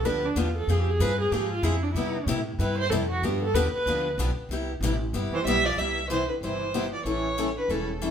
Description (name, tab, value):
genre	acoustic string swing (jazz manouche)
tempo	188 BPM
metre	4/4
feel	swing 61% on 8ths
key	C major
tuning	A4 = 438 Hz
part	dark viola	second line	0.0-8.0 s	C#3 to C5	-29 LUFS	right 2 dB	none
part	upright bass	bass	0.0-8.1 s	E1 to C3	-29 LUFS	equal	none
part	picked steel-string acoustic guitar	accompaniment	0.1-8.1 s	C3 to A4	-29 LUFS	left 3 dB	none
part	rich violin	melody	5.3-8.0 s	A4 to E5	-28 LUFS	right 1 dB	none
room	moderate large studio reverb, RT60 1.0 s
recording	band playing live in one room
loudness	-24 LUFS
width	side -8 dB against mid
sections	0.0-5.8 A section; 5.8-8.1 B section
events	viola solo 0.0-5.8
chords	0.0 G7; 0.7 Fm; 2.0 Cmaj7; 3.2 G7; 4.5 Cmaj7; 7.1 A7